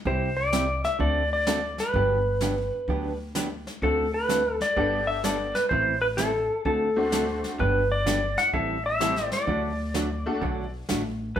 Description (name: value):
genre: country, western swing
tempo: 127 BPM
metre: 4/4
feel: swing 67% on 8ths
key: unclear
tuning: A4 = 440 Hz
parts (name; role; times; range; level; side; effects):
- clean lap steel guitar; melody; 0.1-11.4 s; A4 to F#5; -25 LUFS; left 1 dB; none
- vintage hollow-body jazz guitar; accompaniment; 0.1-11.4 s; C3 to B4; -31 LUFS; right 3 dB; none
- upright bass; bass; 0.1-11.4 s; G1 to D2; -30 LUFS; equal; none
- jazz brush drum kit; drums; 0.1-11.4 s; brushed snare drum, hi-hat, kick drum, snare drum; -34 LUFS; left 1 dB; none
- honky-tonk upright piano; accompaniment; 4.8-10.4 s; A3 to A4; -31 LUFS; left 2 dB; none
room: wet large studio reverb, RT60 0.9 s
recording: band playing live in one room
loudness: -23 LUFS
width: side -10 dB against mid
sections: 0.0-11.4 A section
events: none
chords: 0.1 C; 1.0 D7; 1.9 Gmaj7; 3.8 D7; 4.8 Gadd9; 5.7 Amadd9; 6.7 D7; 7.6 Gmaj7; 8.5 Am7; 9.5 D